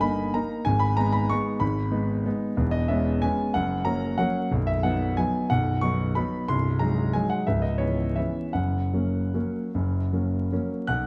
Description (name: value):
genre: classical, piano waltz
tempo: 143-201 BPM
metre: 3/4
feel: rubato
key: unclear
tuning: A4 = 440 Hz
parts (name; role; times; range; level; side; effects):
- warm concert grand piano; solo; 0.0-11.1 s; B0 to F#6; -25 LUFS; equal; none
room: moderate recital hall reverb, RT60 1.8 s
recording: dark, warm production, vinyl crackle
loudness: -25 LUFS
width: mono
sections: 0.0-10.9 A section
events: none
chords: 0.0 D#/G; 0.7 G#m; 2.6 C#m7/E; 3.5 F#; 4.5 B; 6.5 G#7/B#; 7.5 C#m7; 8.5 F#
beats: 0.01 0.34 | 0.65 0.98 1.30 | 1.62 1.92 2.26 | 2.58 2.90 3.23 | 3.55 3.86 4.18 | 4.51 4.84 5.18 | 5.51 5.83 6.16 | 6.48 6.80 7.14 | 7.47 7.80 8.17 | 8.54 8.93 9.35 | 9.74 10.12 10.51 | 10.88